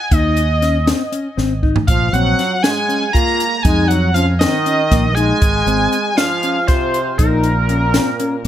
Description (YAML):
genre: progressive instrumental, band music in an uneven meter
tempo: 238 BPM (eighths)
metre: 7/8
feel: straight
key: Bb minor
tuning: A4 = 440 Hz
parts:
  - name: octave-doubled lead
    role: melody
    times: 0.0-8.5 s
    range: Bb4 to Bb5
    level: -18 LUFS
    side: equal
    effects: chorus, plate reverb, ping-pong delay
  - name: mellow electric guitar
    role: arpeggios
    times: 0.1-8.5 s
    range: Bb3 to F4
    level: -21 LUFS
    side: left 5 dB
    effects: none
  - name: fingered electric bass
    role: bass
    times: 0.1-8.5 s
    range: Ab1 to F2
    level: -17 LUFS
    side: equal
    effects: none
  - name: compact cocktail drum kit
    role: drums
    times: 0.1-8.5 s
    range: hi-hat, kick drum, snare drum, toms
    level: -17 LUFS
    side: equal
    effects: none
  - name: trombone with plunger mute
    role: second line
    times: 1.9-8.5 s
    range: Bb2 to Bb3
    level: -22 LUFS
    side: right 4 dB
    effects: ping-pong delay
room: moderate studio reverb, RT60 0.6 s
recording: none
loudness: -13 LUFS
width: side -11 dB against mid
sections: 0.0-8.5 A section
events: drum fill 1.4-1.9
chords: 0.0 Ab; 1.9 Bbm9; 5.4 Ab6; 7.2 Bbm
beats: | 0.12 0.37 0.62 0.88 1.13 1.38 1.63 | 1.89 2.14 2.39 2.64 2.90 3.15 3.40 | 3.65 3.91 4.16 4.41 4.66 4.92 5.17 | 5.42 5.67 5.93 6.18 6.43 6.68 6.93 | 7.19 7.44 7.69 7.94 8.20 8.45